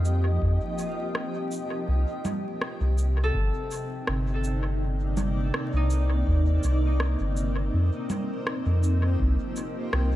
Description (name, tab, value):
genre	ambient dub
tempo	82 BPM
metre	4/4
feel	straight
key	C dorian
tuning	A4 = 439 Hz
part	granular cloud pad	sustained chords	0.0-10.2 s	C3 to Eb5	-31 LUFS	equal	built-in reverb
part	concert harp	arpeggios	0.0-8.9 s	Eb4 to F5	-37 LUFS	left 1 dB	dub echo
part	soft dub sub bass	bass	0.0-10.2 s	G1 to F2	-23 LUFS	equal	none
part	wind-like tuned noise texture	texture	0.0-1.9 s	Eb4 to Eb5	-40 LUFS	left 1 dB	built-in reverb
part	electronic shaker, rim click and congas	drums	0.1-10.1 s	none	-32 LUFS	right 1 dB	dub echo
part	electronic kick drum	drums	0.4-9.4 s	none	-31 LUFS	equal	none
room	digital ambience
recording	echo-heavy mix, vinyl crackle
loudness	-24 LUFS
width	side -14 dB against mid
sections	0.0-1.9 A section; 1.9-10.2 B section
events	none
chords	0.0 F7sus4; 1.9 Cm9; 7.7 F7sus4